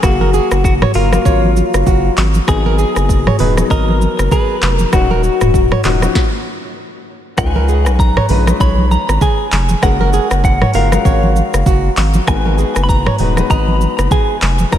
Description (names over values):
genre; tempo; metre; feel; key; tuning
afrobeats; 98 BPM; 4/4; swing 58% on 16ths; unclear; A4 = 441 Hz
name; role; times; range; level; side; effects
direct-recorded clean electric guitar; melody; 0.0-14.8 s; F4 to Cb6; -20 LUFS; left 1 dB; ping-pong delay
warm grand piano; accompaniment; 0.0-14.8 s; F3 to F5; -20 LUFS; left 7 dB; none
saturated sub bass; bass; 0.0-14.8 s; Eb1 to Db2; -15 LUFS; equal; none
afro-pop drum kit; drums; 0.0-14.8 s; handclaps, hi-hat, kick drum, rim click, shaker, snare drum, toms; -16 LUFS; equal; none
flamenco guitar; riff; 0.2-14.4 s; Gb4 to Eb5; -22 LUFS; right 8 dB; ping-pong delay
congas; percussion; 0.2-14.7 s; none; -22 LUFS; right 2 dB; none
room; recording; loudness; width
light reverb; none; -11 LUFS; side -10 dB against mid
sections
0.0-7.4 A section; 7.4-14.8 A section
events
stop 6.2-7.4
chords
0.0 Gbmaj9; 2.5 Abm7; 4.9 Ebm9; 7.4 Db9; 9.8 Gbmaj9; 12.3 Abm7